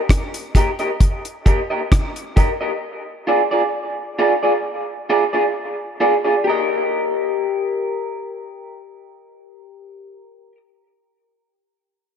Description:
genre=dub reggae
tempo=66 BPM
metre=4/4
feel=straight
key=unclear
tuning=A4 = 440 Hz
part: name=deep reggae drum kit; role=drums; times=0.1-2.6 s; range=hi-hat, kick drum, rim click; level=-15 LUFS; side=equal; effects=none
part: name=electric guitar through a small old amp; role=accompaniment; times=0.6-10.6 s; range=F4 to Eb5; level=-19 LUFS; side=equal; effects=wide subtle chorus, dub echo
room=moderate echo chamber reverb, RT60 2.2 s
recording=echo-heavy mix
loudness=-17 LUFS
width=side -8 dB against mid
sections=0.0-6.5 A section; 6.5-10.1 B section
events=none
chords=0.0 Gm; 2.8 Fm6; 6.5 Eb/G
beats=0.10 1.00 1.91 | 2.82 3.73 4.64 5.55 | 6.46 7.37 8.28 9.19

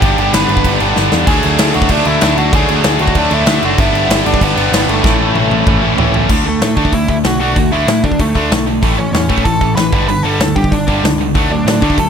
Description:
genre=punk rock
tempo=191 BPM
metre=4/4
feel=straight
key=A major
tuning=A4 = 444 Hz
part: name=overdriven semi-hollow guitar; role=melody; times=0.0-12.1 s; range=A3 to B5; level=-19 LUFS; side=equal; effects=digital delay
part: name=distorted electric guitar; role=riff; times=0.0-12.1 s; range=G2 to E4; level=-18 LUFS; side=left 14 dB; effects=overdrive
part: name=distorted electric guitar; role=riff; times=0.0-6.3 s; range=G2 to E4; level=-18 LUFS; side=equal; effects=overdrive
part: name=tight distorted guitar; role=riff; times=0.0-12.1 s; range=G2 to D4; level=-18 LUFS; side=right 17 dB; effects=distortion
part: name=growling picked electric bass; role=bass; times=0.0-12.1 s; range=F#1 to D3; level=-18 LUFS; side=equal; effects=overdrive
part: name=big rock drum kit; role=drums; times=0.0-12.1 s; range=crash cymbal, hi-hat, kick drum, snare drum, splash cymbal, toms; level=-16 LUFS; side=equal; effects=none
room=little or no reverb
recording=none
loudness=-10 LUFS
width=side -7 dB against mid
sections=0.0-6.3 A section; 6.3-12.1 B section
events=drum fill 1.0-1.3, 5.0-6.3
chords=0.0 G; 1.3 D; 3.8 G; 5.0 A; 6.3 D; 8.8 A; 9.9 G; 11.4 D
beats=| 0.02 0.34 0.65 0.96 | 1.27 1.59 1.90 2.22 | 2.53 2.84 3.16 3.47 | 3.79 4.10 4.41 4.73 | 5.04 5.36 5.67 5.99 | 6.30 6.62 6.94 7.25 | 7.57 7.88 8.20 8.52 | 8.83 9.15 9.46 9.78 | 10.09 10.41 10.72 11.04 | 11.35 11.67 11.98

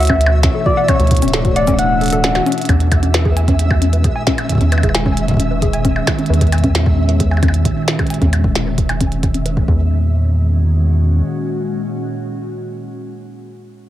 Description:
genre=IDM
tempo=133 BPM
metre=4/4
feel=straight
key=E lydian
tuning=A4 = 436 Hz
part: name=soft struck synth lead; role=melody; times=0.0-2.4 s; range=C#5 to F#5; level=-18 LUFS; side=left 1 dB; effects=chorus, cassette tape, analog delay
part: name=glassy FM pad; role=sustained chords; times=0.0-13.2 s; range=A#2 to F#4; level=-21 LUFS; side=equal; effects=ensemble chorus, built-in reverb
part: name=rubbery square bass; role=bass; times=0.0-11.2 s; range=D1 to E2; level=-15 LUFS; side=equal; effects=none
part: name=glitchy drum kit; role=drums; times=0.0-9.5 s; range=cabasa, hi-hat, percussion blips, snare drum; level=-21 LUFS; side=equal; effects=overdrive, analog delay
part: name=flickering grainy texture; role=texture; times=0.0-9.9 s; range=E5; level=-28 LUFS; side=right 2 dB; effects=built-in reverb
part: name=warbly dusty pluck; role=arpeggios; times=0.1-10.1 s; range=C#4 to G#5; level=-22 LUFS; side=left 2 dB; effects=chorus, dub echo
part: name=electronic kick drum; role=drums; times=0.1-9.8 s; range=none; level=-18 LUFS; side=equal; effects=overdrive
room=light reverb, digital ambience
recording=echo-heavy mix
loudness=-13 LUFS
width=side -13 dB against mid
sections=0.0-2.7 A section; 2.7-9.9 B section; 9.9-13.5 C section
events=kick drops out 1.8-2.7; drum fill 2.5; filter sweep on synth arpeggio sound 2.7-9.9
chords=0.0 Dmaj7; 2.7 E6; 9.7 C#m69/E; 9.9 E6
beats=0.43 | 0.89 1.34 1.79 2.24 | 2.69 3.14 3.59 4.04 | 4.49 4.95 5.40 5.85 | 6.30 6.75 7.20 7.65 | 8.10 8.55 9.01 9.46 | 9.91 10.36 10.81 11.26 | 11.71 12.16 12.61 13.06

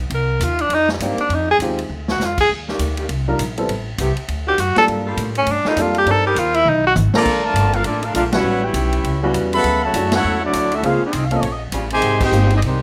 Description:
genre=jazz, big band swing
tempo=202 BPM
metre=4/4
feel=swing 61% on 8ths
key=unclear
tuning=A4 = 440 Hz
part: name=upright bass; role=bass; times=0.0-12.8 s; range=G1 to A2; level=-24 LUFS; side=equal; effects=none
part: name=warm tenor saxophone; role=melody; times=0.1-6.9 s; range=G3 to Bb4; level=-19 LUFS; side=equal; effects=plate reverb
part: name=swinging big-band drum kit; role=drums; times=0.1-12.7 s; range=crash cymbal, hi-hat, kick drum, ride cymbal, snare drum, toms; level=-29 LUFS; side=equal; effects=none
part: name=warm baby grand piano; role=accompaniment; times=1.0-12.5 s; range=G3 to Bb4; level=-24 LUFS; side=equal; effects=none
part: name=mellow saxophone section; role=sustained chords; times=2.7-9.6, 11.7-12.6 s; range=C3 to Bb4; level=-28 LUFS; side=equal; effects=none
part: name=mellow trombone section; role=second line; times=7.1-12.8 s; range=C3 to G4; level=-25 LUFS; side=equal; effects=none
part: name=clear trumpet section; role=melody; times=7.2-12.8 s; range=Ab3 to B5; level=-22 LUFS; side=equal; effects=plate reverb
room=moderate club reverb, RT60 0.5 s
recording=none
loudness=-18 LUFS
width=mono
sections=0.0-7.3 A section; 7.3-12.8 B section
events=tenor saxophone solo 0.0-7.3; drum fill 1.9, 6.7-7.3; band accent 8.3, 10.1, 12.2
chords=0.1 Cm7; 1.3 Fm9; 1.9 Dm; 2.5 Ebmaj7; 3.7 Am9; 4.3 D7b9; 4.9 Gm9; 6.1 Cm7; 6.7 Abm69; 7.3 Bbmaj7; 8.4 A13; 9.6 Dmaj9; 10.8 Bbm9; 11.4 Eb13; 12.0 Abmaj7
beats=| 0.11 0.41 0.71 1.01 | 1.30 1.60 1.90 2.20 | 2.50 2.79 3.09 3.39 | 3.69 3.98 4.28 4.58 | 4.88 5.17 5.47 5.77 | 6.07 6.37 6.66 6.96 | 7.26 7.56 7.85 8.15 | 8.45 8.75 9.04 9.34 | 9.64 9.94 10.24 10.53 | 10.83 11.13 11.43 11.73 | 12.02 12.32 12.62

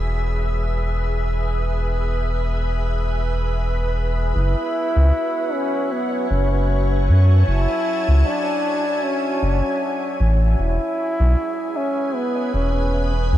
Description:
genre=ambient dub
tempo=77 BPM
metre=4/4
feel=swing 56% on 16ths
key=F# minor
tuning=A4 = 440 Hz
part: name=soft additive organ-like pad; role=sustained chords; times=0.0-13.4 s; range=F#4 to A5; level=-26 LUFS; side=left 1 dB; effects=ensemble chorus, built-in reverb
part: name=round analog bass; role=bass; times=0.0-13.4 s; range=E1 to F#2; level=-18 LUFS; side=equal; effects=none
part: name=mellow trombone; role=melody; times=4.4-13.3 s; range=B3 to E4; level=-22 LUFS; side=equal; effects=dub echo
room=light reverb, small room ambience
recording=echo-heavy mix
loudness=-18 LUFS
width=side -12 dB against mid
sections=0.0-4.4 A section; 4.4-13.4 B section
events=none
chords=0.0 E; 4.4 F#m7; 10.6 E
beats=0.46 | 1.24 2.02 2.80 3.58 | 4.36 5.14 5.92 6.70 | 7.47 8.25 9.03 9.81 | 10.59 11.37 12.15 12.93

